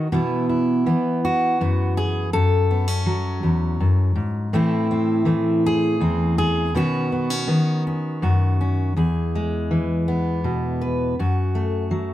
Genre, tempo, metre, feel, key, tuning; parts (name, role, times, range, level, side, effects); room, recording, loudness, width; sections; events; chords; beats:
folk, solo fingerstyle acoustic guitar; 54 BPM (dotted quarters); 6/8; straight; E major; A4 = 441 Hz
fingerpicked steel-string acoustic guitar; solo; 0.0-12.1 s; E2 to B4; -19 LUFS; equal
little or no reverb; close, detailed microphones; -19 LUFS; side -13 dB against mid
0.0-9.0 A section; 9.0-12.1 B section
0.1 Bsus4; 2.3 F#m; 4.5 Am; 6.7 Badd9; 9.0 E; 11.2 F#m
| 0.11 1.22 | 2.33 3.43 | 4.53 5.63 | 6.74 7.85 | 8.97 10.08 | 11.19